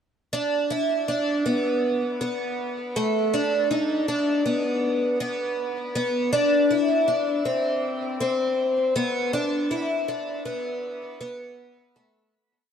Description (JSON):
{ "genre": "dream pop", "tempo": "80 BPM", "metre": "4/4", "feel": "straight", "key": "unclear", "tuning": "A4 = 436 Hz", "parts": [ { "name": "picked twelve-string acoustic guitar", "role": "solo", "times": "0.3-12.3 s", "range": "A3 to E4", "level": "-22 LUFS", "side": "equal", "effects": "lush chorus, tape echo" } ], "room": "wet shimmer reverb, RT60 4.1 s", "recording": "dark, warm production", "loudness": "-22 LUFS", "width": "side -8 dB against mid", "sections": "0.3-12.3 A section", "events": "fade-out 9.3-12.3", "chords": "none", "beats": "| 0.33 1.08 1.83 2.58 | 3.33 4.08 4.83 5.58 | 6.33 7.08 7.83 8.58 | 9.33 10.08 10.83 11.58" }